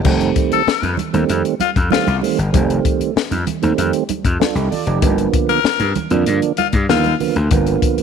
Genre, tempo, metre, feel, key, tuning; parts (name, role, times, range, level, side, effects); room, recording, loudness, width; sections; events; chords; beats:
funk; 96 BPM; 4/4; straight; A4 = 443 Hz
mellow tonewheel organ; stabs; 0.0-8.0 s; D3 to D5; -19 LUFS; right 11 dB; overdrive, chorus vibrato, slow rotary speaker
compact cocktail drum kit; drums; 0.0-8.0 s; crash cymbal, hi-hat, kick drum, snare drum; -20 LUFS; left 4 dB
gritty slap bass; bass; 0.1-8.0 s; F1 to G2; -18 LUFS; left 2 dB; overdrive
congas; percussion; 0.2-7.8 s; -26 LUFS; right 9 dB
raspy tenor saxophone; second line; 0.5-7.1 s; F4 to A#4; -21 LUFS; left 14 dB
light reverb, small room ambience; 1960s-style stereo with parts hard left and right; -14 LUFS; side -7 dB against mid
0.0-8.0 A section
tonewheel organ fill 4.1-5.0
0.0 F9; 5.0 G7#9
| 0.05 0.67 1.29 1.91 | 2.54 3.16 3.78 4.40 | 5.02 5.65 6.27 6.89 | 7.51